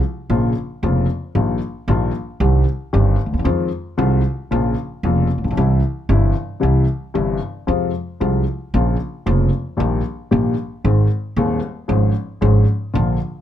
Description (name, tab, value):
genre	tango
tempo	114 BPM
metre	4/4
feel	rubato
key	F minor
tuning	A4 = 442 Hz
part	dark grand piano	accompaniment	0.3-13.2 s	Eb1 to Ab4	-19 LUFS	left 3 dB	none
part	upright bass	bass	0.3-13.2 s	F1 to F2	-18 LUFS	right 2 dB	none
room	little or no reverb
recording	close, detailed microphones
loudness	-16 LUFS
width	side -11 dB against mid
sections	0.0-13.4 A section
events	none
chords	0.3 Bbm; 1.4 Ebadd9/Bb; 2.4 Cm; 3.5 Fm7; 4.5 Bbm; 5.6 C; 7.7 Fm; 8.7 Bbm; 9.8 Eb/Bb; 10.8 Ab; 11.9 Db/Ab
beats	0.30 0.82 | 1.35 1.88 2.41 2.94 | 3.46 3.99 4.51 5.04 | 5.57 6.09 6.62 7.15 | 7.68 8.21 8.73 9.26 | 9.79 10.31 10.84 11.37 | 11.89 12.42 12.94